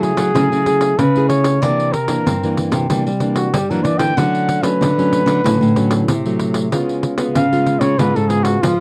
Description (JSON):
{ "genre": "samba and choro", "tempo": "94 BPM", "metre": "4/4", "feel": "straight", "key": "unclear", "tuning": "A4 = 440 Hz", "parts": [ { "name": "mellow trumpet", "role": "melody", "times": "0.0-8.8 s", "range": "E#4 to G5", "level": "-21 LUFS", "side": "equal", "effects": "none" }, { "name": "nylon-string guitar", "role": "accompaniment", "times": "0.0-8.8 s", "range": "G2 to G#4", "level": "-22 LUFS", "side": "equal", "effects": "none" }, { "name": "nylon-string guitar", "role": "bass", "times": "0.0-8.8 s", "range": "G#2 to C4", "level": "-21 LUFS", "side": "equal", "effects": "none" }, { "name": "pandeiro", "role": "percussion", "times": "0.0-8.8 s", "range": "none", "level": "-24 LUFS", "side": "equal", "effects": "none" } ], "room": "light reverb", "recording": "dry, close 1970s-style studio recording", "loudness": "-16 LUFS", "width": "mono", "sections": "0.0-8.8 A section", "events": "trumpet solo 0.0-8.8", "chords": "0.0 F#m9; 1.6 C9; 4.2 Dmaj7; 6.7 C#7" }